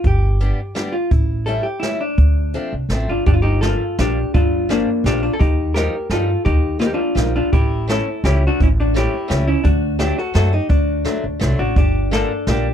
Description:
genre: musette waltz.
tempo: 169 BPM.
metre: 3/4.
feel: straight.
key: D minor, G minor from 3.3 s.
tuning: A4 = 439 Hz.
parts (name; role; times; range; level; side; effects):
vintage hollow-body jazz guitar; melody; 0.0-12.7 s; Bb3 to Bb4; -21 LUFS; left 1 dB; none.
upright bass; bass; 0.0-12.7 s; G1 to G2; -19 LUFS; equal; none.
jazz brush drum kit; drums; 0.0-12.6 s; hi-hat, kick drum, snare drum; -19 LUFS; equal; none.
picked old ladder-braced acoustic guitar; accompaniment; 0.4-12.7 s; D3 to G4; -25 LUFS; left 3 dB; none.
room: little or no reverb.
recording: dark, warm production.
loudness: -16 LUFS.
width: side -9 dB against mid.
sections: 0.0-3.3 A section; 3.3-12.7 B section.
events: none.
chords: 0.0 G; 1.1 A7; 2.2 Dm7; 3.3 Gm7; 5.4 Ebadd9; 7.5 A7; 9.6 D; 11.8 Gm.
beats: | 0.04 0.40 0.75 | 1.11 1.47 1.82 | 2.18 2.54 2.90 | 3.26 3.62 3.98 | 4.34 4.70 5.05 | 5.40 5.75 6.11 | 6.46 6.81 7.17 | 7.52 7.88 8.24 | 8.60 8.95 9.30 | 9.65 10.00 10.35 | 10.70 11.05 11.41 | 11.76 12.12 12.47.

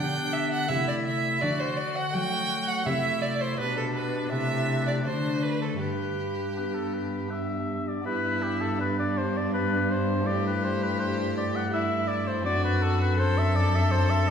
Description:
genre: classical, baroque-style sonata movement with continuo.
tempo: 82 BPM.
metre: 3/4.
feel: straight.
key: G major.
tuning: A4 = 441 Hz.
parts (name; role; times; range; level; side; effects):
clear oboe; melody; 0.0-14.3 s; D4 to F#5; -31 LUFS; left 4 dB; none.
clear violin; second line; 0.0-14.3 s; D4 to G5; -30 LUFS; right 3 dB; none.
chamber organ, stopped flute; accompaniment; 0.0-14.3 s; F#2 to A4; -31 LUFS; left 2 dB; none.
rich cello; bass; 0.0-14.3 s; F#2 to F#3; -29 LUFS; equal; none.
room: wet recital hall reverb, RT60 1.7 s.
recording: heard from further back in the room.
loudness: -24 LUFS.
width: side -7 dB against mid.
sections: 0.0-8.1 A section; 8.1-14.3 B section.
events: none.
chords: 0.0 G; 0.7 Am/C; 1.4 D; 2.9 D9/C; 3.6 G/B; 4.3 Am/C; 5.0 D; 5.8 G; 10.3 A5/G; 12.5 D7/F#.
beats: 0.70 | 1.42 2.14 2.86 | 3.58 4.31 5.05 | 5.80 6.56 7.31 | 8.06 8.79 9.53 | 10.26 11.00 11.73 | 12.46 13.19 13.92.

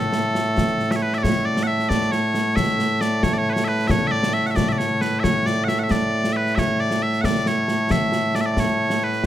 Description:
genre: scottish traditional, Scottish pipe music.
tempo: 90 BPM (dotted quarters).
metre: 6/8.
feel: straight.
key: A major.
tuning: A4 = 440 Hz.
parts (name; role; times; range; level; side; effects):
loud bright bagpipes; melody; 0.0-9.3 s; A2 to F#5; -20 LUFS; equal; none.
concert snare drum and concert bass drum; drums; 0.1-9.3 s; none; -24 LUFS; left 1 dB; none.
room: light reverb.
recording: close, detailed microphones.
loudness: -18 LUFS.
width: side -12 dB against mid.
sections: 0.0-1.2 A section; 1.2-9.3 A section.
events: none.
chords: none.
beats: 0.57 | 1.24 1.90 | 2.57 3.24 | 3.90 4.57 | 5.24 5.90 | 6.57 7.24 | 7.90 8.57 | 9.24.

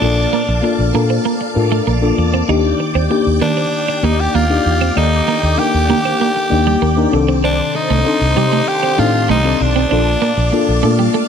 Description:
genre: pop.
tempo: 97 BPM.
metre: 4/4.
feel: straight.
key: unclear.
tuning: A4 = 440 Hz.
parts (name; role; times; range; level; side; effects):
raspy tenor saxophone; melody; 0.0-10.8 s; D4 to G4; -18 LUFS; equal; ping-pong delay.
mellow FM electric piano; accompaniment; 0.0-11.3 s; Bb2 to D5; -17 LUFS; left 5 dB; chorus, tube saturation.
phased string machine; sustained chords; 0.0-11.3 s; C5 to D6; -24 LUFS; right 1 dB; ensemble chorus, phaser.
twelve-string electric guitar; riff; 0.0-11.2 s; G3 to Eb4; -21 LUFS; right 10 dB; analog chorus.
vintage muted fingered electric bass; bass; 0.0-11.1 s; Bb1 to Eb3; -17 LUFS; equal; none.
room: light reverb, digital ambience.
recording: none.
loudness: -12 LUFS.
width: side -7 dB against mid.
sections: 0.0-11.3 A section.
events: none.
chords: 0.0 Bbmaj7; 2.5 Ebmaj7; 7.1 Cm69; 9.9 Bbmaj7.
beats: | 0.02 0.64 1.25 1.87 | 2.49 3.11 3.73 4.35 | 4.97 5.58 6.20 6.82 | 7.44 8.06 8.68 9.30 | 9.91 10.53 11.15.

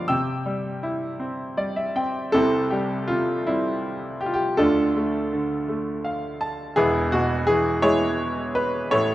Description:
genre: classical, lyrical solo piano.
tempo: 54 BPM (dotted quarters).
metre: 6/8.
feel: rubato.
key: unclear.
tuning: A4 = 440 Hz.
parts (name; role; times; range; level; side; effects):
clear grand piano; solo; 0.0-9.1 s; E1 to E6; -21 LUFS; equal; none.
room: moderate scoring stage reverb, RT60 1.7 s.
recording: dark, warm production.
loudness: -21 LUFS.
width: side -15 dB against mid.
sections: 0.0-2.3 A section; 2.3-9.1 B section.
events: grand piano fill 1.2-2.3, 5.7-6.8.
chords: 0.1 C; 4.6 Dm; 6.8 E.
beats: | 0.10 1.20 | 2.34 3.48 | 4.59 5.69 | 6.77 7.84 | 8.93.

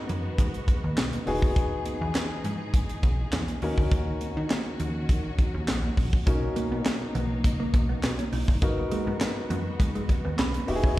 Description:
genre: early-eighties boogie funk.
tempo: 102 BPM.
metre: 4/4.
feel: straight.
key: unclear.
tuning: A4 = 440 Hz.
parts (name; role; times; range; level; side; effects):
warm concert grand piano; accompaniment; 0.0-11.0 s; B3 to B5; -33 LUFS; left 2 dB; plate reverb, slapback echo.
warm studio string section; sustained chords; 0.0-11.0 s; D#3 to G#4; -38 LUFS; left 2 dB; plate reverb.
plucky analog bass; bass; 0.1-11.0 s; E1 to D#3; -29 LUFS; equal; none.
tight funk drum kit; drums; 0.1-11.0 s; handclaps, hi-hat, kick drum, snare drum; -26 LUFS; equal; none.
congas; percussion; 0.1-10.7 s; none; -37 LUFS; right 2 dB; slapback echo.
mellow electric guitar; riff; 6.4-10.9 s; G#3 to D#4; -34 LUFS; right 3 dB; wide subtle chorus, slapback echo.
room: light reverb.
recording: live gig heard through the venue's PA, recital hall reverb.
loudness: -24 LUFS.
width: side -16 dB against mid.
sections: 0.0-11.0 A section.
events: grand piano fill 10.1-11.0.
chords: 0.0 G#m7; 1.3 Emaj7; 3.6 D#m7; 6.3 Bmaj7; 8.6 G#m7.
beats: 0.39 0.97 | 1.56 2.15 2.74 3.33 | 3.92 4.50 5.09 5.68 | 6.27 6.86 7.45 8.03 | 8.62 9.21 9.80 10.39 | 10.97.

